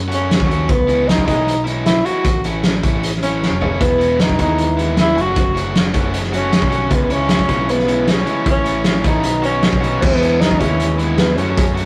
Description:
indie rock; 154 BPM; 4/4; straight; E major; A4 = 441 Hz
growling picked electric bass; bass; 0.0-11.9 s; E1 to F#2; -24 LUFS; equal; overdrive
breathy tenor saxophone; melody; 0.1-11.8 s; B3 to F#4; -21 LUFS; equal
overdriven electric guitar; riff; 0.1-11.9 s; E3 to F#4; -26 LUFS; equal
loose indie drum kit; drums; 0.1-11.9 s; crash cymbal, hi-hat, kick drum, snare drum, toms; -20 LUFS; equal
raw garage guitar; riff; 3.8-11.9 s; A2 to B4; -27 LUFS; equal; overdrive
combo organ; sustained chords; 10.0-11.9 s; A4 to D#6; -37 LUFS; equal
moderate studio reverb, RT60 0.7 s; rough rehearsal-room recording, warm saturation; -16 LUFS; mono
0.0-10.0 A section; 10.0-11.9 A section
drum fill 3.4-3.8
0.0 F#m; 0.7 C#m7; 2.2 A; 3.8 Emaj7; 5.2 F#m; 6.9 C#m7; 8.5 A; 9.2 B; 10.0 Emaj7
0.30 | 0.69 1.08 1.47 1.86 | 2.25 2.64 3.03 3.42 | 3.81 4.19 4.58 4.97 | 5.36 5.75 6.14 6.53 | 6.92 7.31 7.70 8.08 | 8.47 8.86 9.25 9.64 | 10.02 10.41 10.80 11.19 | 11.57

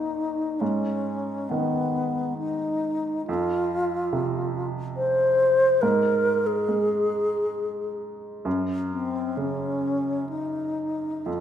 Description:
classical, impressionist duo for alto flute and grand piano; 60-72 BPM; 3/4; rubato; A4 = 440 Hz
bright wooden-headed alto flute; melody; 0.0-11.4 s; Cb4 to C5; -24 LUFS; left 1 dB
bright baby grand piano; accompaniment; 0.0-11.4 s; Eb2 to Ab3; -29 LUFS; right 2 dB
moderate scoring stage reverb, RT60 1.6 s; minimal, uncompressed stereo recording; -23 LUFS; side -10 dB against mid
0.0-11.4 A section
0.0 Eb5; 0.6 Abm; 3.3 F5; 5.8 N.C.; 8.5 Gb5
| 0.61 1.50 2.39 | 3.28 4.13 4.97 | 5.82 6.68 7.55 | 8.46 9.37 10.30 | 11.27

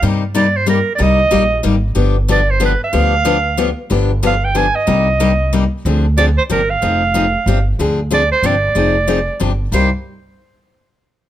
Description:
acoustic string swing (jazz manouche); 186 BPM; 3/4; swing 59% on 8ths; C minor; A4 = 440 Hz
breathy clarinet; melody; 0.0-9.9 s; Bb4 to Ab5; -16 LUFS; right 4 dB
picked steel-string acoustic guitar; accompaniment; 0.0-9.9 s; C3 to Ab4; -18 LUFS; left 5 dB
upright bass; bass; 0.0-9.9 s; F1 to G2; -17 LUFS; right 1 dB
light reverb; close, detailed microphones; -12 LUFS; side -12 dB against mid
0.0-5.8 A section; 5.8-9.7 B section
0.0 Cm7; 2.0 G7; 4.9 Cm7; 5.8 Dm7b5; 6.5 G7sus4; 6.8 Fm7; 7.5 G7sus4; 7.8 Dm7b5; 8.4 G7sus4; 8.8 Fm7; 9.4 G7sus4; 9.7 Cm7
| 0.03 0.35 0.67 | 1.00 1.32 1.64 | 1.97 2.29 2.61 | 2.94 3.26 3.58 | 3.91 4.23 4.55 | 4.88 5.20 5.52 | 5.85 6.17 6.49 | 6.82 7.14 7.46 | 7.79 8.11 8.43 | 8.76 9.08 9.40 | 9.72

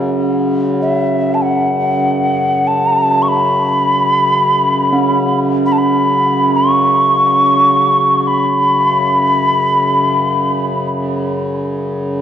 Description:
world meditative, free-time meditation music; free time; A4 = 441 Hz
hand-pumped harmonium; drone; 0.0-12.2 s; F#2 to C#3; -18 LUFS; left 1 dB
bronze singing bowl; texture; 0.0-12.2 s; C#4; -20 LUFS; right 3 dB
bright reedy alto ocarina; melody; 0.8-10.7 s; E5 to C#6; -13 LUFS; equal; ping-pong delay
wet church reverb, RT60 3.0 s; worn, warbling old tape, cassette tape, warbly pitch drift; -11 LUFS; side -9 dB against mid
0.0-12.2 A section
free time

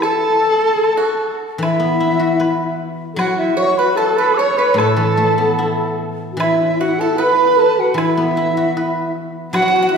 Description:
chinese traditional, Chinese chamber ensemble; 76 BPM; 2/4; rubato; A4 = 440 Hz
large dizi; melody; 0.0-10.0 s; E5 to E6; -19 LUFS; right 2 dB
dark horsehead fiddle; second line; 0.0-10.0 s; E4 to C#5; -21 LUFS; right 3 dB
low xiao; second line; 0.0-10.0 s; E4 to E5; -20 LUFS; left 4 dB
pipa; second line; 0.0-9.9 s; E4 to C#5; -24 LUFS; right 3 dB
guzheng; accompaniment; 0.0-10.0 s; A2 to B4; -21 LUFS; left 1 dB
woodblock; percussion; 0.0-9.7 s; -30 LUFS; left 1 dB
wet scoring stage reverb, RT60 2.1 s; heard from further back in the room; -14 LUFS; side -6 dB against mid
0.0-6.4 A section; 6.4-10.0 B section
| 0.02 0.83 | 1.62 2.41 | 3.19 3.97 | 4.77 5.58 | 6.39 7.18 | 7.97 8.75 | 9.53

